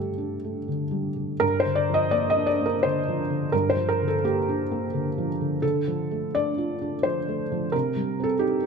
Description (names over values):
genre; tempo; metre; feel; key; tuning
neoclassical minimalist piano; 86 BPM; 3/4; rubato; G minor; A4 = 439 Hz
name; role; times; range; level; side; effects
felt-muted upright piano; solo; 0.0-8.7 s; G2 to Eb5; -23 LUFS; equal; none
room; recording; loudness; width
moderate recital hall reverb, RT60 1.4 s; close, detailed microphones; -23 LUFS; side -5 dB against mid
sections
0.0-1.4 A section; 1.4-8.7 B section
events
none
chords
0.0 Gsus2; 1.4 Gm7; 5.6 Dm; 7.7 Cm